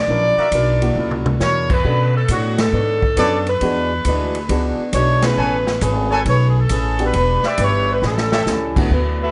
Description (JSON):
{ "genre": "jazz, big band swing", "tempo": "136 BPM", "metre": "4/4", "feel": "swing 67% on 8ths", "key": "A major", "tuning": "A4 = 445 Hz", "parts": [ { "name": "bright saxophone section", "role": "melody", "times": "0.0-9.3 s", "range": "A3 to D5", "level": "-22 LUFS", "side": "equal", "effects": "plate reverb" }, { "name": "upright bass", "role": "bass", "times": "0.0-9.3 s", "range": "E1 to B2", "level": "-22 LUFS", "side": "equal", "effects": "none" }, { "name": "picked swing-style acoustic guitar", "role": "accompaniment", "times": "0.1-9.2 s", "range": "A2 to C#5", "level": "-27 LUFS", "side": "equal", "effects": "none" }, { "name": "warm upright piano", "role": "accompaniment", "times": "0.1-8.9 s", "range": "D3 to A#4", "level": "-26 LUFS", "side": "equal", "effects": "none" }, { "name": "clear trumpet section", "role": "stabs", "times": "0.4-0.5, 3.2-8.4 s", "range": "F#4 to G#5", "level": "-24 LUFS", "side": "equal", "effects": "none" }, { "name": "swinging big-band drum kit", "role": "drums", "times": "0.5-9.0 s", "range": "crash cymbal, hi-hat, kick drum, ride cymbal, snare drum, toms", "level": "-26 LUFS", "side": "equal", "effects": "none" } ], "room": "moderate club reverb, RT60 0.6 s", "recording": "nothing above 10.8 kHz", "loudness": "-17 LUFS", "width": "mono", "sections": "0.0-8.9 A section", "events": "drum fill 1.0-1.4, 8.0-8.5; band accent 2.5, 5.2", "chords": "0.1 F#7b13; 1.8 Bm9; 3.6 E9; 5.4 Amaj9; 7.1 Em7; 8.0 A7" }